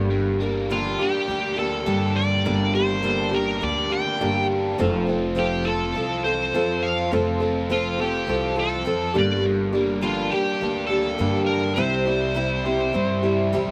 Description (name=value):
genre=rock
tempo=103 BPM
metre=4/4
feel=straight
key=unclear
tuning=A4 = 438 Hz
part: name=picked acoustic archtop guitar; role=accompaniment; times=0.0-13.7 s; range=G2 to A4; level=-26 LUFS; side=equal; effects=slapback echo
part: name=biting overdriven guitar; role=riff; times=0.0-13.7 s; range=G2 to A4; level=-31 LUFS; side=equal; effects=slapback echo
part: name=upright bass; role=bass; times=0.0-13.7 s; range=F1 to G2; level=-29 LUFS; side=equal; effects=none
part: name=smooth overdriven lead guitar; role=melody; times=0.7-13.5 s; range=F4 to G5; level=-28 LUFS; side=equal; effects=none
room=little or no reverb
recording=recorded outdoors, with no room sound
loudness=-23 LUFS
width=mono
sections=0.0-13.7 A section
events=none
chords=0.0 Gm; 4.8 F; 9.2 Gm; 11.8 C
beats=| 0.10 0.69 1.28 1.86 | 2.45 3.04 3.62 4.21 | 4.79 5.37 5.96 6.54 | 7.12 7.71 8.29 8.87 | 9.45 10.03 10.61 11.19 | 11.78 12.36 12.94 13.52